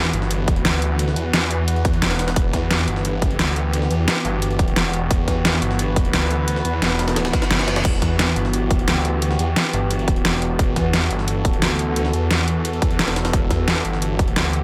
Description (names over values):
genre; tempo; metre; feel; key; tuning
dark technical drum and bass; 175 BPM; 4/4; straight; E minor; A4 = 439 Hz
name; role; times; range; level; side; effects
metallic inharmonic drone; sustained chords; 0.0-14.6 s; E3 to B4; -27 LUFS; equal; chorus, built-in reverb, sidechain pumping
snarling distorted saw bass; bass; 0.0-14.6 s; E1 to E2; -24 LUFS; equal; tube saturation
jungle sampler-style drum kit; drums; 0.0-14.5 s; hi-hat, snare drum; -33 LUFS; equal; none
dubstep drum kit; drums; 0.1-14.6 s; crash cymbal, hi-hat, snare drum; -24 LUFS; equal; overdrive
electronic kick drum; drums; 0.5-14.3 s; none; -24 LUFS; equal; overdrive
reverse cymbal; sound effects; 7.3-7.8 s; none; -31 LUFS; equal; none
room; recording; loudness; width
light reverb; none; -20 LUFS; mono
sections
0.0-14.6 A section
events
reverse cymbal 7.3-7.8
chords
0.0 Em